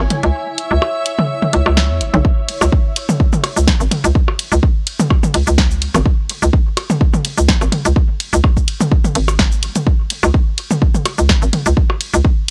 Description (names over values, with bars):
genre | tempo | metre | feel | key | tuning
minimal techno | 126 BPM | 4/4 | swing 54% on 16ths | C# minor | A4 = 440 Hz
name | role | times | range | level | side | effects
hollow knocking FM bass | bass | 0.0-12.2 s | G#1 to E2 | -16 LUFS | equal | sidechain pumping
granular cloud pad | texture | 0.0-2.3 s | E4 to E5 | -25 LUFS | equal | built-in reverb, sidechain pumping
house drum kit | drums | 0.1-12.5 s | cabasa, hi-hat, ride cymbal, snare drum | -22 LUFS | equal | none
electronic toms and percussion blips | percussion | 0.1-12.0 s | none | -20 LUFS | equal | none
electronic kick drum | drums | 2.2-12.4 s | none | -16 LUFS | equal | none
room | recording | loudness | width
digital ambience | dry, gritty hardware recording, cassette tape | -15 LUFS | mono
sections
0.0-2.2 A section; 2.2-12.5 B section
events
kick drops out 0.3-2.2; drop 2.2-12.5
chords
0.0 C#m; 2.2 C#5